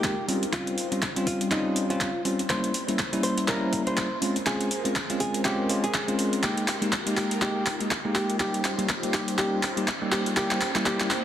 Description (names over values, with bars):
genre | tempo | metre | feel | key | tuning
deep house | 122 BPM | 4/4 | swing 58% on 16ths | unclear | A4 = 439 Hz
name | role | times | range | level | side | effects
hollow-body jazz guitar | melody | 0.0-11.2 s | Eb4 to C5 | -32 LUFS | equal | ping-pong delay
airy breathy pad | sustained chords | 0.0-11.2 s | G3 to C5 | -35 LUFS | equal | chorus, phaser, sidechain pumping
bell-like tine electric piano | stabs | 0.0-11.1 s | G3 to G4 | -28 LUFS | equal | fast stereo tremolo, sidechain pumping, low-pass filter, digital delay
deep house drum kit | drums | 0.0-11.2 s | handclaps, hi-hat | -28 LUFS | equal | small room reverb
electronic kick drum | drums | 0.0-11.0 s | none | -36 LUFS | equal | high-pass filter on kick, small room reverb
room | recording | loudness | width
moderate plate reverb, RT60 2.8 s | dense, heavily limited modern master, vinyl crackle | -24 LUFS | side -10 dB against mid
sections
0.0-11.2 A section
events
build-up 0.0-11.2; drum fill 0.0-11.2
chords
0.3 Eb13; 2.5 C7b9; 4.2 Bbm9; 6.4 Fm11; 8.2 Eb13; 10.4 C7b9